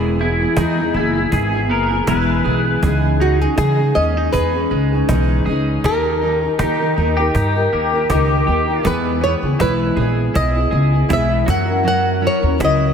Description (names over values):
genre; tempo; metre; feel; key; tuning
acoustic pop; 80 BPM; 4/4; swing 55% on 16ths; unclear; A4 = 442 Hz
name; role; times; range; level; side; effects
flamenco guitar; melody; 0.0-12.9 s; F#4 to F#5; -20 LUFS; equal; wide subtle chorus, diffuse ambient delay
fingerpicked steel-string acoustic guitar; accompaniment; 0.0-12.9 s; C#3 to A#4; -20 LUFS; equal; double-tracked left and right
twelve-string electric guitar; arpeggios; 0.0-12.9 s; D#3 to G#4; -26 LUFS; right 4 dB; harmonic tremolo, diffuse ambient delay
upright bass; bass; 0.0-12.9 s; E1 to D#3; -19 LUFS; equal; none
pedal steel guitar; second line; 0.2-8.8 s; D#4 to B4; -21 LUFS; left 2 dB; analog chorus
cajon; drums; 0.6-12.8 s; none; -26 LUFS; equal; none
room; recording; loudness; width
moderate lush hall reverb, RT60 2.7 s; dreamy mix soaked in reverb; -14 LUFS; side -7 dB against mid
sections
0.0-8.9 A section; 8.9-12.9 B section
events
none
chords
0.0 E; 2.8 C#madd9; 5.8 D#; 8.9 E; 11.5 F#7